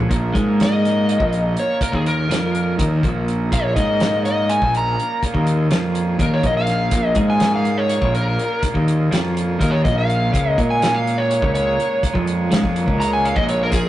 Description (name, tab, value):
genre	psychedelic rock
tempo	247 BPM (eighths)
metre	7/8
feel	straight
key	Bb minor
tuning	A4 = 441 Hz
part	combo organ	sustained chords	0.0-13.9 s	F3 to Db5	-31 LUFS	right 4 dB	none
part	twelve-string electric guitar	riff	0.0-13.9 s	Bb2 to Bb3	-22 LUFS	equal	tremolo
part	fuzz picked electric bass	bass	0.0-13.9 s	Bb1 to Bb2	-22 LUFS	right 1 dB	overdrive
part	hand-pumped harmonium	drone	0.1-13.9 s	Bb2 to Bb3	-28 LUFS	equal	none
part	damped 70s drum kit	drums	0.1-13.8 s	hi-hat, kick drum, snare drum	-22 LUFS	equal	none
part	overdriven slide guitar	melody	0.6-13.9 s	Ab4 to Bb5	-20 LUFS	left 1 dB	none
part	tambourine	percussion	13.7-13.8 s	none	-38 LUFS	left 4 dB	none
room	wet stone room reverb, RT60 1.2 s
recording	rough rehearsal-room recording, tube saturation, nothing above 10.6 kHz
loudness	-16 LUFS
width	side -14 dB against mid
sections	0.1-13.9 A section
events	electric slide guitar solo 0.1-13.9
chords	0.1 Bbm; 10.3 Db5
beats	| 0.11 0.35 0.59 0.84 1.08 1.32 1.57 | 1.81 2.05 2.30 2.54 2.78 3.03 3.27 | 3.52 3.76 4.00 4.25 4.49 4.73 4.98 | 5.22 5.46 5.71 5.95 6.20 6.44 6.68 | 6.92 7.17 7.41 7.66 7.90 8.14 8.38 | 8.63 8.87 9.11 9.36 9.60 9.84 10.09 | 10.33 10.57 10.81 11.06 11.30 11.54 11.79 | 12.03 12.27 12.51 12.76 13.00 13.24 13.48 | 13.72